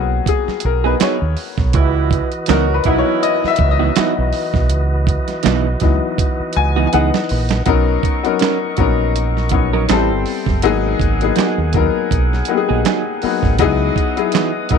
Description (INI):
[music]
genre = R&B, neo-soul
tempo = 81 BPM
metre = 4/4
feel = swing 55% on 16ths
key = C# dorian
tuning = A4 = 441 Hz
[part]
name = clear upright piano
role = accompaniment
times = 0.0-14.8 s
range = E3 to G#5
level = -18 LUFS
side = left 14 dB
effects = none
[part]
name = deep dub fingered electric bass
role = bass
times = 0.0-14.8 s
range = F#1 to D#2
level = -18 LUFS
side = right 1 dB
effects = none
[part]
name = dusty soul sampler-style drum kit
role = drums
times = 0.3-14.8 s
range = handclaps, hi-hat, kick drum, snare drum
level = -19 LUFS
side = right 5 dB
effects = none
[part]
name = vintage hollow-body jazz guitar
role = second line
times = 0.8-14.5 s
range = E3 to A#4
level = -18 LUFS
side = right 16 dB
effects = none
[part]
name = tonewheel organ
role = sustained chords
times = 1.7-14.8 s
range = E3 to D#6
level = -25 LUFS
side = right 1 dB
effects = slow rotary speaker
[part]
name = mellow horn section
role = stabs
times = 1.7-3.6 s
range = E3 to F#4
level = -20 LUFS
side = right 15 dB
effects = none
[sound]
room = light reverb, digital ambience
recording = 1960s-style stereo with parts hard left and right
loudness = -14 LUFS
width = side -6 dB against mid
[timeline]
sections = 0.0-7.7 A section; 7.7-14.8 B section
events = upright piano solo 0.0-7.7; drum fill 6.2-7.7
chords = 0.0 G#m7; 1.7 C#m11; 6.9 C#m9; 7.7 Bmaj9; 9.9 Am7; 10.6 G#m7; 13.6 C#m11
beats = 0.26 1.00 | 1.74 2.48 3.22 3.96 | 4.70 5.45 6.19 6.93 | 7.67 8.41 9.15 9.89 | 10.63 11.37 12.11 12.85 | 13.59 14.33